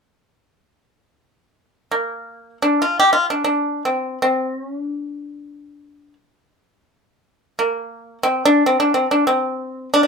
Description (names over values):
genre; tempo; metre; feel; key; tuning
chinese traditional, Chinese solo plucked strings; free time; none; none; D jue mode; A4 = 438 Hz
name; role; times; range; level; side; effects
pipa; solo; 1.9-10.1 s; Bb3 to G4; -17 LUFS; equal; none
room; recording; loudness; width
light reverb; none; -17 LUFS; side -5 dB against mid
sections
1.1-10.1 A section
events
none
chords
none